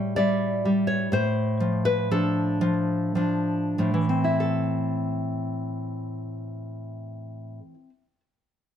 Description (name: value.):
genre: romantic piece for solo classical guitar.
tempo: 46-65 BPM.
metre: 3/4.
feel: rubato.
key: A minor.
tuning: A4 = 440 Hz.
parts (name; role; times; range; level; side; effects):
nylon-string guitar; solo; 0.0-8.2 s; A2 to D5; -23 LUFS; equal; slapback echo.
room: light reverb.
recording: close, detailed microphones.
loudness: -23 LUFS.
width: side -9 dB against mid.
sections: 0.0-4.4 A section; 4.4-7.8 B section.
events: slowing down 0.0-4.4.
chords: 0.0 A7; 1.1 Dm/A; 4.4 Am.